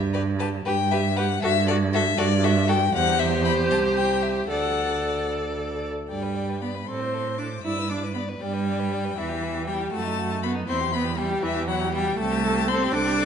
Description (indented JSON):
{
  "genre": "quick classical-period movement for string quartet",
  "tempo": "79 BPM (dotted quarters)",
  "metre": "6/8",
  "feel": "rubato",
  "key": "G major",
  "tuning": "A4 = 440 Hz",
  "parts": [
    { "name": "rich cello", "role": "bass", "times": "0.0-13.2 s", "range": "C2 to A2", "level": "-26 LUFS", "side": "right 4 dB", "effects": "none" },
    { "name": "rich violin", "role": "melody", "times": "0.1-13.2 s", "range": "D5 to E6", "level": "-27 LUFS", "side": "left 9 dB", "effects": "none" },
    { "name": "rich violin", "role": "second line", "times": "0.1-13.2 s", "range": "D#4 to D5", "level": "-32 LUFS", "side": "left 3 dB", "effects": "none" },
    { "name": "rich viola", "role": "accompaniment", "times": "0.1-13.2 s", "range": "E3 to A4", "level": "-27 LUFS", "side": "right 2 dB", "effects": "none" }
  ],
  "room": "wet recital hall reverb, RT60 1.8 s",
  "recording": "nothing above 10.7 kHz",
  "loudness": "-22 LUFS",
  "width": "side -7 dB against mid",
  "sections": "0.0-6.1 A section; 6.1-13.2 B section",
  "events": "none",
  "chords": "0.0 G; 1.4 Em11/G; 2.9 C/E; 4.5 D; 6.1 G; 6.9 Amadd11; 7.6 G; 9.2 Em; 9.9 D#dim/F#; 10.7 Em; 12.2 Am7/C",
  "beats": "0.66 | 1.43 2.19 | 2.94 3.71 | 4.50 5.30 | 6.11 6.88 | 7.64 8.41 | 9.17 9.93 | 10.68 11.43 | 12.18 12.93"
}